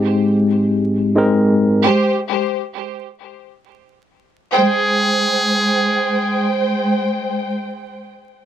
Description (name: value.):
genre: hip hop.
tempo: free time.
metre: none.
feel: none.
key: Ab major.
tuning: A4 = 440 Hz.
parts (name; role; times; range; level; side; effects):
tine electric piano; accompaniment; 0.0-1.9 s; Ab2 to Bb4; -13 LUFS; left 1 dB; medium stereo tremolo, high-pass filter, low-pass filter.
warm studio string section; stabs; 1.8-7.5 s; Ab3 to G5; -18 LUFS; right 1 dB; high-pass filter, low-pass filter, ping-pong delay.
trumpet with metal mute; melody; 4.5-6.5 s; Ab4; -18 LUFS; right 1 dB; high-pass filter, low-pass filter, ping-pong delay.
room: moderate studio reverb, RT60 0.5 s.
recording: dense, heavily limited modern master, vinyl crackle.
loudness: -14 LUFS.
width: side -10 dB against mid.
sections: 0.0-4.5 A section; 4.5-7.2 B section.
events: none.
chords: 0.0 Abmaj7.